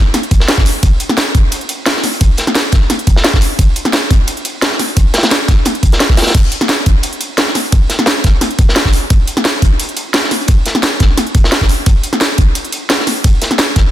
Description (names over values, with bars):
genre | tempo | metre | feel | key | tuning
drum and bass | 174 BPM | 4/4 | swing 53% on 16ths | none | none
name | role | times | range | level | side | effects
crunchy breakbeat drum kit | drums | 0.1-13.8 s | hi-hat, snare drum | -19 LUFS | equal | high-pass filter on hats, high-pass filter on snare, high-pass filter on room
drum and bass drum kit | drums | 0.1-13.8 s | crash cymbal, hi-hat, ride cymbal, snare drum | -14 LUFS | equal | none
electronic kick drum | drums | 0.3-13.8 s | none | -10 LUFS | equal | none
room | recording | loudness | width
light reverb | dense, heavily limited modern master | -10 LUFS | side -13 dB against mid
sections
0.0-13.9 A section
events
none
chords
none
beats
0.14 0.48 | 0.83 1.18 1.52 1.86 | 2.21 2.55 2.90 3.24 | 3.59 3.93 4.28 4.62 | 4.97 5.31 5.66 6.00 | 6.35 6.69 7.04 7.38 | 7.73 8.07 8.42 8.76 | 9.11 9.45 9.79 10.14 | 10.48 10.83 11.18 11.52 | 11.86 12.21 12.55 12.90 | 13.24 13.59